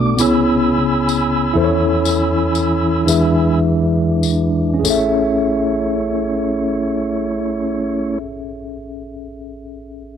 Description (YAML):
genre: slow gospel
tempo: 31-46 BPM (dotted quarters)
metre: 6/8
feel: straight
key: A major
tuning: A4 = 440 Hz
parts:
  - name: mellow tine electric piano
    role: accompaniment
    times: 0.0-10.2 s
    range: A1 to E5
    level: -17 LUFS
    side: left 1 dB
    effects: medium stereo tremolo
  - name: mellow tonewheel organ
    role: sustained chords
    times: 0.0-8.2 s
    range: B2 to E6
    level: -19 LUFS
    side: right 2 dB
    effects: fast rotary speaker
  - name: tambourine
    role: percussion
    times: 0.2-5.4 s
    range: none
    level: -23 LUFS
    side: left 12 dB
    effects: none
room: studio reverb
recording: dry, close 1970s-style studio recording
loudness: -14 LUFS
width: side -8 dB against mid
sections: 0.0-4.8 A section; 4.8-8.7 B section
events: slowing down 0.0-4.8; tonewheel organ solo 0.0-4.8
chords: 0.2 C#m7; 1.6 A/E; 3.1 E7; 4.8 Amaj7